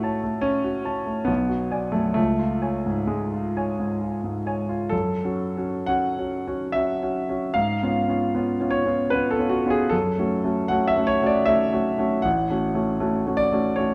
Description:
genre	classical, romantic character piece for solo piano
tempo	59-80 BPM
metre	3/4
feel	rubato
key	F# minor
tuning	A4 = 440 Hz
part	clear concert grand piano	solo	0.0-13.9 s	A1 to A5	-24 LUFS	equal	none
room	moderate recital hall reverb, RT60 1.5 s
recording	none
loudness	-24 LUFS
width	mono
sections	0.0-4.9 A section; 4.9-13.9 B section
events	none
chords	0.0 F#m/A; 1.3 G#m7b5/B; 2.2 C#; 4.9 F#m; 7.5 C#7/G#; 9.9 F#m; 12.3 F#m/A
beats	0.44 1.29 | 2.17 3.11 4.02 | 4.92 5.88 6.73 | 7.55 8.34 9.12 | 9.93 10.71 11.48 | 12.26 13.02 13.78

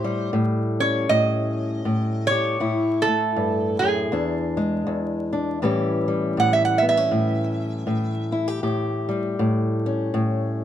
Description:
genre	acoustic country blues, solo or duo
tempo	80 BPM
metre	4/4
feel	swing 60% on 8ths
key	A mixolydian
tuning	A4 = 440 Hz
part	lap resonator guitar	melody	0.0-8.3 s	G#4 to F#5	-22 LUFS	right 4 dB	none
part	fingerpicked old ladder-braced acoustic guitar	accompaniment	0.0-10.6 s	E2 to G4	-22 LUFS	left 1 dB	none
room	moderate studio reverb, RT60 0.8 s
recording	close, detailed microphones, vinyl crackle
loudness	-20 LUFS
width	side -10 dB against mid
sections	0.0-5.6 A section; 5.6-10.6 B section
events	resonator guitar played with a steel bar solo 5.6-10.6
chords	0.0 A7; 4.1 E7; 5.6 A7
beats	0.33 1.08 1.84 | 2.59 3.35 4.10 4.86 | 5.61 6.37 7.12 7.88 | 8.63 9.38 10.14

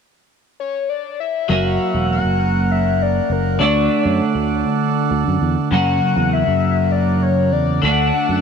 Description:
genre	rock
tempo	199 BPM (eighths)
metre	7/8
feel	straight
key	unclear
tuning	A4 = 438 Hz
part	overdriven synth lead	melody	0.6-8.4 s	A#4 to F#5	-21 LUFS	left 11 dB	phaser, tape echo
part	hand-pumped harmonium	sustained chords	1.5-8.4 s	D4 to F#5	-26 LUFS	right 11 dB	none
part	twelve-string electric guitar	riff	1.5-8.4 s	F#2 to F#4	-18 LUFS	right 1 dB	flanger, double-tracked left and right
part	fingered electric bass	bass	1.5-8.4 s	E1 to F#2	-20 LUFS	right 1 dB	transformer saturation
room	light reverb, digital ambience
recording	1960s-style stereo with parts hard left and right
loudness	-15 LUFS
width	side -6 dB against mid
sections	0.0-1.5 A section; 1.5-8.4 B section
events	none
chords	0.0 N.C.; 1.5 F#; 3.6 D; 5.7 F#; 7.8 D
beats	0.29 0.59 0.89 1.19 | 1.49 1.80 2.10 2.40 2.70 3.00 3.30 | 3.61 3.91 4.21 4.51 4.81 5.11 5.42 | 5.72 6.02 6.32 6.62 6.92 7.22 7.53 | 7.83 8.13

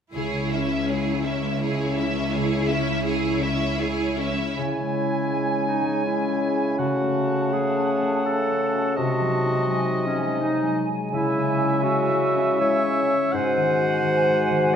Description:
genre	classical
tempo	82 BPM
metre	3/4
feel	rubato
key	C# minor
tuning	A4 = 441 Hz
part	warm studio violin section	melody	0.1-4.6 s	C#5 to E5	-31 LUFS	left 1 dB	none
part	rich symphonic violin section	second line	0.1-4.6 s	E4 to G#4	-30 LUFS	equal	none
part	warm studio viola section	accompaniment	0.1-4.6 s	C#4 to E4	-29 LUFS	right 4 dB	none
part	rich symphonic cello section	bass	0.1-4.3 s	C#2	-28 LUFS	right 3 dB	none
part	concert harp	arpeggios	0.2-14.8 s	G#2 to F#4	-28 LUFS	left 5 dB	none
part	clear clarinet	second line	4.6-14.8 s	C#4 to C#5	-26 LUFS	equal	none
part	large flute ensemble	second line	4.6-14.8 s	G#5 to A5	-30 LUFS	right 2 dB	none
part	warm oboe	second line	4.6-14.8 s	D#5 to G#5	-29 LUFS	right 2 dB	none
part	mellow bassoon	accompaniment	4.6-14.8 s	G#2 to C#3	-26 LUFS	right 1 dB	none
part	mellow French horn section	sustained chords	4.6-14.8 s	G#3 to F#4	-29 LUFS	left 2 dB	none
room	wet recital hall reverb, RT60 1.3 s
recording	none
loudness	-20 LUFS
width	side -8 dB against mid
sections	0.1-4.6 A section; 4.6-14.8 B section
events	none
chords	0.1 C#m; 6.8 F#m/C#; 9.0 G#7/B#; 11.1 C#m; 13.3 G#7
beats	| 0.14 0.89 1.62 | 2.33 3.05 3.79 | 4.57 5.31 6.05 | 6.78 7.53 8.26 | 8.97 9.70 10.42 | 11.13 11.84 12.61 | 13.33 14.03 14.75

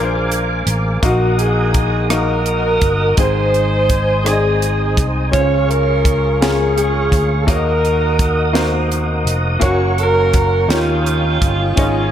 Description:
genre	slow gospel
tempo	56 BPM (dotted quarters)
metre	6/8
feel	straight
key	unclear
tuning	A4 = 438 Hz
part	dark saxophone section	melody	0.0-12.1 s	Bb3 to Db5	-22 LUFS	left 1 dB	diffuse ambient delay
part	warm alto saxophone	melody	0.0-12.1 s	F4 to Db5	-20 LUFS	right 2 dB	diffuse ambient delay
part	clear grand piano	accompaniment	0.0-12.1 s	Ab2 to Eb5	-22 LUFS	left 3 dB	none
part	tonewheel organ	sustained chords	0.0-12.1 s	Ab4 to Eb6	-23 LUFS	right 2 dB	slow rotary speaker, chorus vibrato
part	fingered electric bass	bass	0.0-12.1 s	F1 to Eb2	-18 LUFS	equal	none
part	tight funk drum kit	drums	0.3-11.9 s	hi-hat, kick drum, rim click, snare drum	-19 LUFS	equal	none
room	moderate plate reverb, RT60 1.9 s, studio reverb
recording	dreamy mix soaked in reverb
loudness	-13 LUFS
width	side -10 dB against mid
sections	0.0-12.1 A section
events	none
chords	0.0 Bb7; 1.0 Ebm/Bb; 3.2 Ab; 5.3 Db; 7.5 Ebm; 9.6 Gb; 10.7 Eb9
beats	| 1.03 2.10 | 3.18 4.25 | 5.33 6.40 | 7.48 8.55 | 9.63 10.71 | 11.78

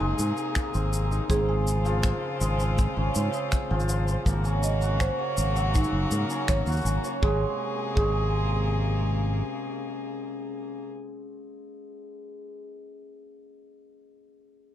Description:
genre	folktronica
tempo	81 BPM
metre	4/4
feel	straight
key	Ab mixolydian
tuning	A4 = 440 Hz
part	marimba with medium mallets	second line	0.0-8.2 s	Eb4 to Ab5	-33 LUFS	right 2 dB	digital delay
part	warm string quartet	sustained chords	0.0-10.9 s	C3 to C5	-34 LUFS	left 1 dB	none
part	hammered dulcimer	arpeggios	0.0-12.6 s	F3 to Db5	-32 LUFS	left 1 dB	digital delay
part	fingered electric bass	bass	0.0-9.4 s	Gb1 to Ab2	-26 LUFS	equal	none
part	electronic shaker and finger snaps	drums	0.2-7.2 s	none	-34 LUFS	equal	overdrive, small room reverb
part	kick drum	drums	0.6-8.2 s	none	-26 LUFS	equal	small room reverb
room	light reverb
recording	none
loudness	-24 LUFS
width	side -11 dB against mid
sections	0.0-7.2 A section; 7.2-10.2 B section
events	none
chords	0.0 Abadd9; 1.3 Dbmaj7/Ab; 4.3 Gb/Ab; 7.2 Abadd9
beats	0.56 | 1.30 2.04 2.79 3.53 | 4.27 5.01 5.75 6.49 | 7.23 7.97 8.71 9.45

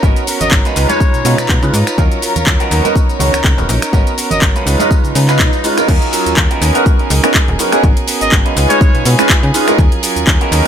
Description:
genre	filtered disco house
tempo	123 BPM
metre	4/4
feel	swing 55% on 16ths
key	Eb minor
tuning	A4 = 440 Hz
part	bright baby grand piano	accompaniment	0.0-10.7 s	Gb3 to Eb5	-17 LUFS	right 2 dB	phaser, sidechain pumping, low-pass filter
part	bright chamber string section	sustained chords	0.0-10.7 s	Ab4 to Bb5	-22 LUFS	left 2 dB	sidechain pumping, low-pass filter
part	direct-recorded clean electric guitar	riff	0.0-10.7 s	Gb3 to Cb5	-20 LUFS	right 4 dB	vintage 12-bit sampler grit, sidechain pumping, low-pass filter
part	slap-like FM bass	bass	0.0-10.6 s	D#1 to Db3	-15 LUFS	equal	sidechain pumping, low-pass filter
part	electronic kick drum	drums	0.0-10.4 s	none	-12 LUFS	equal	studio reverb
part	house drum kit	drums	0.0-10.6 s	cabasa, crash cymbal, finger snaps, handclaps, hi-hat	-17 LUFS	left 1 dB	studio reverb, sidechain pumping on hats, sidechain pumping on perc, sidechain pumping on cymbals
part	tambourine and congas	percussion	0.0-5.9 s	none	-26 LUFS	right 2 dB	sidechain pumping on perc, low-pass filter on perc
part	clear trumpet section	melody	0.4-4.4, 8.2-9.2 s	Db5 to Eb5	-19 LUFS	left 2 dB	vintage 12-bit sampler grit, sidechain pumping, low-pass filter, digital delay
part	swell	sound effects	5.1-5.9 s	none	-24 LUFS	left 3 dB	none
room	studio ambience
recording	none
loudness	-10 LUFS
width	side -9 dB against mid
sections	0.0-5.9 A section; 5.9-10.7 B section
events	swell 5.1-5.9; drop 5.9-10.7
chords	0.0 Abm11; 0.8 Db9; 2.0 Ebm9; 2.7 Bmaj9; 3.9 Abm11; 4.7 Db9; 5.9 Ebm9; 6.6 Bmaj9; 7.8 Abm11; 8.6 Db9; 9.8 Ebm9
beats	| 0.03 0.52 1.01 1.49 | 1.98 2.47 2.96 3.44 | 3.93 4.42 4.91 5.40 | 5.88 6.37 6.86 7.35 | 7.83 8.32 8.81 9.30 | 9.79 10.27

